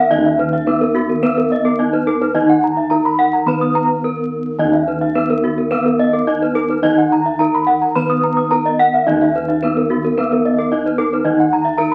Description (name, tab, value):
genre	gamelan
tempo	107 BPM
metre	4/4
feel	straight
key	Eb pelog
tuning	A4 = 440 Hz
part	gamelan-type bronze metallophone	melody	0.0-11.9 s	Cb4 to Cb5	-22 LUFS	equal	none
part	gamelan-type bronze metallophone	accompaniment	0.0-11.9 s	Eb3 to Cb4	-27 LUFS	equal	none
part	gamelan-type bronze metallophone	arpeggios	0.0-11.9 s	Bb4 to Eb6	-22 LUFS	equal	none
part	gamelan-type bossed gongs	bass	0.0-11.9 s	Eb2 to Fb4+35c	-23 LUFS	equal	none
part	gamelan-type bronze metallophone	arpeggios	0.1-11.9 s	Gb4 to Eb6	-21 LUFS	equal	none
room	wet studio reverb, RT60 0.6 s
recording	very old 78 rpm record, vinyl crackle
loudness	-16 LUFS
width	mono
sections	0.0-11.9 A section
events	break 3.7-4.6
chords	none